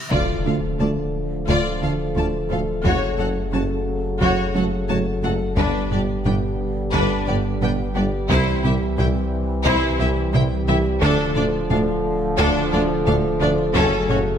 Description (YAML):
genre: cinematic, hybrid orchestral and electronic film score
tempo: 88 BPM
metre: 4/4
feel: straight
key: unclear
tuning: A4 = 437 Hz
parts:
  - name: reverse cymbal and impact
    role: sound effects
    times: 0.0-2.8 s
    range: none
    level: -30 LUFS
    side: left 1 dB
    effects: none
  - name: rich symphonic violin section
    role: melody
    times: 0.1-14.2 s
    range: A4 to A5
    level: -28 LUFS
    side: left 4 dB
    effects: none
  - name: rich symphonic violin section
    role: second line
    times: 0.1-14.2 s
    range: C#4 to D5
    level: -29 LUFS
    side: left 3 dB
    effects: none
  - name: warm symphonic viola section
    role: accompaniment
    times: 0.1-14.2 s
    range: C#4 to F#4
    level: -28 LUFS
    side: right 1 dB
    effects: none
  - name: clear trombone section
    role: sustained chords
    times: 0.1-14.4 s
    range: C#3 to G3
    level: -27 LUFS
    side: right 4 dB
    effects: none
  - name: mellow French horn section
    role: sustained chords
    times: 0.1-14.4 s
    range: A3 to A4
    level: -28 LUFS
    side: left 3 dB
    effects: none
  - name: resonant blip pluck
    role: arpeggios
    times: 0.1-14.3 s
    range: C3 to G4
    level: -30 LUFS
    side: right 3 dB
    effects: none
  - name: warm studio cello section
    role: bass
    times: 0.1-14.2 s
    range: C2 to G2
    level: -27 LUFS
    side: right 2 dB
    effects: none
  - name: warm sub bass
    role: bass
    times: 0.1-14.4 s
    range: D1 to C2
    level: -28 LUFS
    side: left 1 dB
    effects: none
  - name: warm symphonic double bass section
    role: bass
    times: 0.1-14.2 s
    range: F#1 to D2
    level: -28 LUFS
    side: right 2 dB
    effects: none
  - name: warm tuba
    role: bass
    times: 0.1-14.2 s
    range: F#1 to D2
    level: -29 LUFS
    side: right 3 dB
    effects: none
  - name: solo taiko drums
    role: drums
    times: 0.1-14.4 s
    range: none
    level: -27 LUFS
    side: left 2 dB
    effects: none
room: moderate scoring stage reverb, RT60 1.6 s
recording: none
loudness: -18 LUFS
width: side -8 dB against mid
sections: 0.1-14.4 A section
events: impact 0.1-2.8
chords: 0.1 Dm; 2.8 F#m; 5.6 G; 8.3 C; 11.0 Dm; 13.8 F#m